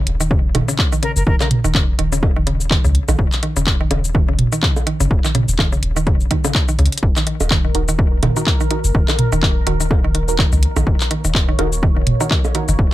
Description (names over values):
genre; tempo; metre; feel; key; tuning
minimal techno; 125 BPM; 4/4; swing 57% on 16ths; Eb minor; A4 = 440 Hz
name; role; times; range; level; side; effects
punchy sub bass; bass; 0.1-12.9 s; Eb1 to Db2; -19 LUFS; equal; sidechain pumping
garage drum kit; drums; 0.1-12.8 s; cabasa, handclaps, hi-hat; -21 LUFS; left 1 dB; none
mallet-like synth pluck; riff; 0.2-12.7 s; Db3 to Eb3; -23 LUFS; equal; chorus, sidechain pumping, ping-pong delay
electronic kick drum; drums; 0.3-12.9 s; none; -18 LUFS; equal; none
electronic toms and bongos; percussion; 0.5-12.5 s; none; -21 LUFS; right 2 dB; tape echo
breathy bright jazz flute; melody; 1.0-1.5 s; Bb4; -26 LUFS; left 1 dB; tape echo
bubbling stepped-filter texture; texture; 7.5-12.9 s; Bb3 to Db5; -28 LUFS; left 1 dB; chorus, built-in reverb, sidechain pumping
filtered dub chord stab; stabs; 7.7-12.7 s; Eb4 to Bb4; -26 LUFS; right 4 dB; phaser, tape echo
room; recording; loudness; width
little or no reverb; none; -14 LUFS; side -15 dB against mid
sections
0.0-12.9 A section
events
drum fill 6.8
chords
0.0 Eb5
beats
0.31 0.79 | 1.27 1.75 2.23 2.71 | 3.19 3.67 4.15 4.63 | 5.11 5.59 6.07 6.55 | 7.03 7.51 7.99 8.47 | 8.95 9.43 9.91 10.39 | 10.87 11.35 11.83 12.31 | 12.79